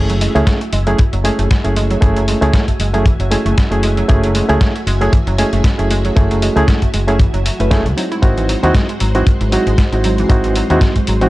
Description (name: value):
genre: nu-disco, nu disco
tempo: 116 BPM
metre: 4/4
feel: swing 55% on 16ths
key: F# dorian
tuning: A4 = 441 Hz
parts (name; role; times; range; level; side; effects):
- barky reed electric piano; accompaniment; 0.0-11.3 s; A3 to B4; -17 LUFS; right 1 dB; overdrive, tremolo, sidechain pumping, analog delay
- string machine, full ensemble; sustained chords; 0.0-11.3 s; G#3 to G#5; -24 LUFS; equal; ensemble chorus, vintage 12-bit sampler grit, sidechain pumping
- fingered electric bass; bass; 0.0-11.3 s; F#1 to D#2; -17 LUFS; equal; transformer saturation
- analog pluck; arpeggios; 0.1-11.3 s; D#3 to E4; -24 LUFS; right 3 dB; chorus, cassette tape, sidechain pumping, analog delay
- dusty soul sampler-style drum kit; drums; 0.1-11.3 s; hi-hat, snare drum; -24 LUFS; left 1 dB; overdrive
- kick drum; drums; 0.5-11.1 s; none; -12 LUFS; equal; none
room: little or no reverb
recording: dry, gritty hardware recording, cassette tape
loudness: -12 LUFS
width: side -18 dB against mid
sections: 0.0-11.3 A section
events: none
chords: 0.0 F#m9; 8.0 G#7b13